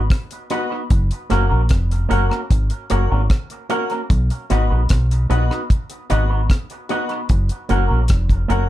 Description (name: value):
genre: roots reggae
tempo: 75 BPM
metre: 4/4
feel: straight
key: F# major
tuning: A4 = 438 Hz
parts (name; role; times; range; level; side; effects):
- deep dub fingered electric bass; bass; 0.0-8.7 s; E#1 to B1; -17 LUFS; equal; none
- deep reggae drum kit; drums; 0.1-8.7 s; hi-hat, kick drum, rim click; -18 LUFS; equal; none
- electric guitar with an envelope filter; accompaniment; 0.5-8.6 s; A#3 to B4; -24 LUFS; right 3 dB; dub echo
- clear grand piano; stabs; 0.5-8.7 s; F#4 to F#5; -25 LUFS; left 6 dB; none
room: light reverb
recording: dark, warm production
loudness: -16 LUFS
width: side -14 dB against mid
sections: 0.0-8.7 A section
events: none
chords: 0.0 B; 0.9 F#; 4.1 B; 7.3 F#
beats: 0.11 | 0.91 1.71 2.51 3.31 | 4.10 4.90 5.70 6.50 | 7.30 8.10